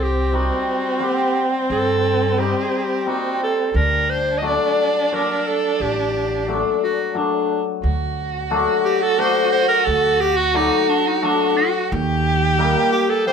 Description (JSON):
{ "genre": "klezmer", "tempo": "88 BPM", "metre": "3/4", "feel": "straight", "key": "D phrygian dominant", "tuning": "A4 = 440 Hz", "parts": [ { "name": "bright clarinet", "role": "melody", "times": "0.0-13.3 s", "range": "D4 to Eb5", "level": "-20 LUFS", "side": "right 1 dB", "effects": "none" }, { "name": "warm violin", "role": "second line", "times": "0.0-13.3 s", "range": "C4 to G4", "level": "-22 LUFS", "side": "right 2 dB", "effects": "none" }, { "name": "upright bass", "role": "bass", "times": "0.0-12.7 s", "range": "A1 to G2", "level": "-22 LUFS", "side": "right 1 dB", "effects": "none" }, { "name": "cimbalom", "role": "accompaniment", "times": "0.3-13.3 s", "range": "F#3 to F#5", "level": "-22 LUFS", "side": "left 5 dB", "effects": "none" } ], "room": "wet studio reverb, RT60 0.6 s", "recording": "band playing live in one room", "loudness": "-17 LUFS", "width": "side -6 dB against mid", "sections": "0.0-7.8 A section; 7.8-13.3 B section", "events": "none", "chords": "0.0 Cm; 3.8 D; 11.9 Eb" }